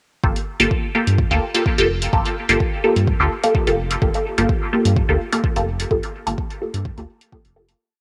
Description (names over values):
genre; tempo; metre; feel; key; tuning
dub techno; 127 BPM; 4/4; straight; G minor; A4 = 440 Hz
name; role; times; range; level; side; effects
filtered dub chord stab; stabs; 0.2-7.7 s; Bb3 to A4; -22 LUFS; equal; phaser, sidechain pumping, cassette tape, dub echo
round analog bass; bass; 0.2-7.7 s; F1 to G2; -23 LUFS; equal; sidechain pumping
electronic kick drum; drums; 0.2-7.4 s; none; -24 LUFS; equal; overdrive
electronic hi-hat; drums; 0.4-7.8 s; none; -31 LUFS; equal; overdrive
room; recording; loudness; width
light reverb, digital ambience; home recording on cassette; -19 LUFS; mono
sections
0.2-7.8 groove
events
filter sweep on synth stab 0.2-7.8; fade-out 5.3-7.8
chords
0.2 Gm9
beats
| 0.24 0.71 1.19 1.66 | 2.13 2.60 3.07 3.55 | 4.02 4.49 4.96 5.44 | 5.91 6.38 6.85 7.33